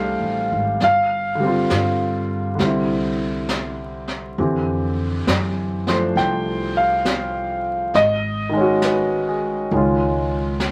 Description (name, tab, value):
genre	jazz ballad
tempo	67 BPM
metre	4/4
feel	swing 67% on 8ths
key	unclear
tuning	A4 = 440 Hz
part	clear concert grand piano	accompaniment	0.0-10.7 s	D3 to G5	-22 LUFS	equal	none
part	upright bass	bass	0.0-10.7 s	G1 to G2	-28 LUFS	equal	none
part	jazz brush drum kit	drums	0.8-10.7 s	brushed snare drum, hi-hat, snare drum	-29 LUFS	equal	none
room	moderate studio reverb, RT60 0.5 s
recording	vinyl crackle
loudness	-20 LUFS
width	mono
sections	0.0-4.4 A section; 4.4-10.7 A section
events	none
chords	0.0 Fmaj9; 0.8 G5; 2.6 Cadd9; 4.4 Fmaj9; 7.9 Ab5; 9.7 Db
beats	| 0.80 1.70 2.59 3.48 | 4.38 5.27 6.16 7.05 | 7.94 8.82 9.71 10.60